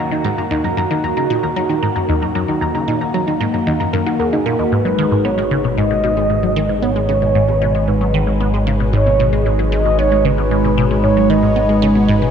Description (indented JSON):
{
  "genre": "ambient, sequencer-driven space music",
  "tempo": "114 BPM",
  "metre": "4/4",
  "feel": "straight",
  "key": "Eb minor, G# minor from 4.7 s",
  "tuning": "A4 = 439 Hz",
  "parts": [
    { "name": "phased analog pad", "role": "sustained chords", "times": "0.0-12.3 s", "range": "Eb3 to Eb5", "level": "-19 LUFS", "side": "equal", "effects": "phaser, chorus" },
    { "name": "soft round pluck", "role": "arpeggios", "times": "0.0-4.7 s", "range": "Eb4 to Bb5", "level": "-22 LUFS", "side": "right 1 dB", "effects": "chorus, auto-pan, cassette tape, tape echo" },
    { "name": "resonant blip pluck", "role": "riff", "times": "0.0-12.3 s", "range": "Eb2 to B3", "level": "-19 LUFS", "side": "equal", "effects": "phaser, tape echo" },
    { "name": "mellow horn-like synth lead", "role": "melody", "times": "4.2-12.3 s", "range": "Ab4 to D#5", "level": "-19 LUFS", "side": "right 2 dB", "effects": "chorus, tape echo" },
    { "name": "fat analog bass", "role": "bass", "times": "4.7-12.3 s", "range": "G#1", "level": "-19 LUFS", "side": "left 1 dB", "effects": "none" },
    { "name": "bubbling stepped-filter texture", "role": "texture", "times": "6.0-12.3 s", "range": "C#5", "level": "-37 LUFS", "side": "right 6 dB", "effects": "none" }
  ],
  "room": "wet cathedral reverb, RT60 5.2 s",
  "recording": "in a vast, echoing space, cassette tape, nothing above 10.5 kHz",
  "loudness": "-14 LUFS",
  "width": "side -8 dB against mid",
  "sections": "0.0-4.7 A section; 4.7-12.3 B section",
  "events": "none",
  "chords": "0.0 Ebm; 4.7 G#m7"
}